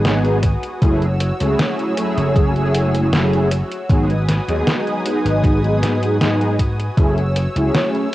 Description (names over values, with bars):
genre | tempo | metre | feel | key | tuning
vaporwave | 78 BPM | 4/4 | straight | F# dorian | A4 = 440 Hz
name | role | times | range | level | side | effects
mellow synth brass | accompaniment | 0.0-8.1 s | F#3 to G#4 | -20 LUFS | equal | ensemble chorus, cassette tape, analog delay
lush unison pad | sustained chords | 0.0-8.1 s | F#4 to E6 | -26 LUFS | equal | chorus, cassette tape
vintage slap bass | bass | 0.0-7.7 s | F#1 to G#2 | -19 LUFS | equal | none
detuned 8-bit digital drum machine | drums | 0.1-8.1 s | hi-hat, snare drum | -22 LUFS | equal | vintage 12-bit sampler grit, studio reverb, cassette tape
electronic kick drum | drums | 0.4-7.1 s | none | -16 LUFS | equal | vintage 12-bit sampler grit, studio reverb, cassette tape
room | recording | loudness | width
little or no reverb | home recording on cassette | -15 LUFS | side -16 dB against mid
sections
0.0-8.1 A section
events
none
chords
0.0 G#m7; 0.8 F#m7; 3.9 G#m7; 7.0 F#m7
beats
0.05 | 0.82 1.59 2.36 3.13 | 3.90 4.67 5.43 6.21 | 6.97 7.74